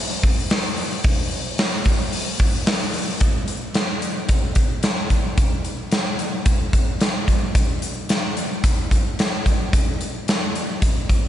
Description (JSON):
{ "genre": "rock", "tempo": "110 BPM", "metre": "4/4", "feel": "straight", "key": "none", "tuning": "none", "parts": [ { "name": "big rock drum kit", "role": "drums", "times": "0.2-11.2 s", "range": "hi-hat, kick drum, snare drum", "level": "-18 LUFS", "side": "equal", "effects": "none" } ], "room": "light reverb", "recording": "nothing above 10.3 kHz, faint mains hum", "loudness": "-18 LUFS", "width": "side -12 dB against mid", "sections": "0.0-3.2 A section; 3.2-11.3 B section", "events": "none", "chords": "none", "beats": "0.51 | 1.04 1.58 2.12 2.67 | 3.21 3.75 4.29 4.83 | 5.38 5.92 6.46 7.01 | 7.55 8.09 8.64 9.18 | 9.72 10.27 10.81" }